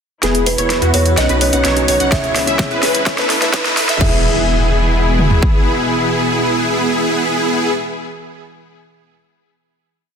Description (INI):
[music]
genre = EDM, festival progressive house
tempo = 127 BPM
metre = 4/4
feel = straight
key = E major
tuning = A4 = 440 Hz
[part]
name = felt-muted upright piano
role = accompaniment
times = 0.2-7.7 s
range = B3 to C#5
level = -26 LUFS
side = right 2 dB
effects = sidechain pumping
[part]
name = muted studio string section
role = sustained chords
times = 0.2-7.7 s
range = B2 to E4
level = -25 LUFS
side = left 1 dB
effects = sidechain pumping, low-pass filter
[part]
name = plucky unison lead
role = arpeggios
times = 0.2-7.7 s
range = F#4 to F#5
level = -22 LUFS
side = left 1 dB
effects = ensemble chorus, sidechain pumping, ping-pong delay
[part]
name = supersaw chords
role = riff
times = 0.2-7.7 s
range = B3 to F#5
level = -18 LUFS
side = equal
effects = analog chorus, sidechain pumping, low-pass filter, ping-pong delay
[part]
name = saturated sub bass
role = bass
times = 0.2-5.4 s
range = E1 to A2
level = -19 LUFS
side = equal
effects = sidechain pumping
[part]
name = big-room dance drum kit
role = drums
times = 0.2-4.1 s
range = crash cymbal, hi-hat, snare drum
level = -19 LUFS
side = equal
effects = overdrive, high-pass filter on snare, high-pass filter on hats, high-pass filter on cymbals
[part]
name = riser and impact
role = sound effects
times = 2.0-7.8 s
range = none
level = -26 LUFS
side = equal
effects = none
[part]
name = buzzing kalimba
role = melody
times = 0.5-7.7 s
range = B4 to E5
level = -21 LUFS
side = right 1 dB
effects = ping-pong delay
[part]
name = big-room dance drum kit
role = drums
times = 2.1-5.5 s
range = kick drum, toms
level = -15 LUFS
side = equal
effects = overdrive
[sound]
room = moderate lush hall reverb, RT60 1.9 s, digital ambience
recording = dense, heavily limited modern master, high-pass filter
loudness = -12 LUFS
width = side -7 dB against mid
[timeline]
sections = 0.2-4.0 build; 4.0-7.8 final chord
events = build-up 0.2-4.0; drum fill 0.2-4.0; filter sweep on supersaw synth 0.2-4.0; filter sweep 0.2-4.0; riser 2.0-4.0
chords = 0.2 E; 1.2 Badd9; 2.1 C#m; 3.1 Asus2; 4.0 E